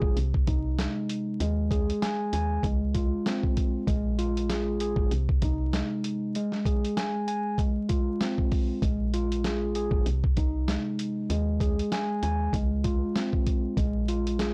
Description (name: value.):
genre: hip hop, boom-bap hip-hop.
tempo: 97 BPM.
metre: 4/4.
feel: swing 55% on 16ths.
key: Ab major.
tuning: A4 = 440 Hz.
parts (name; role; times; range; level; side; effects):
mellow tine electric piano; accompaniment; 0.0-14.5 s; C3 to Ab5; -32 LUFS; equal; cassette tape, high-pass filter, low-pass filter.
woody FM bass; bass; 0.0-14.5 s; Ab1 to Eb2; -32 LUFS; equal; tube saturation.
dusty soul sampler-style drum kit; drums; 0.0-14.5 s; hi-hat, kick drum, snare drum; -30 LUFS; equal; none.
room: light reverb.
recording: blown-out, overdriven recording, vinyl crackle, overdrive.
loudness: -28 LUFS.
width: mono.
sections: 0.0-14.5 A section.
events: none.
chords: 0.2 Ab/C; 1.4 Ebsus4; 2.6 Dbmaj7; 3.9 Bb5; 5.1 Ab/C; 6.3 N.C.; 7.6 Ab6; 8.8 Bb5; 10.1 Ab/C; 11.3 Ebsus4; 12.5 Dbmaj7; 13.8 Bb5.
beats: 0.16 0.78 | 1.40 2.02 2.64 3.26 | 3.88 4.49 5.11 5.73 | 6.35 6.97 7.59 8.21 | 8.82 9.44 10.06 10.68 | 11.30 11.92 12.54 13.15 | 13.77 14.39.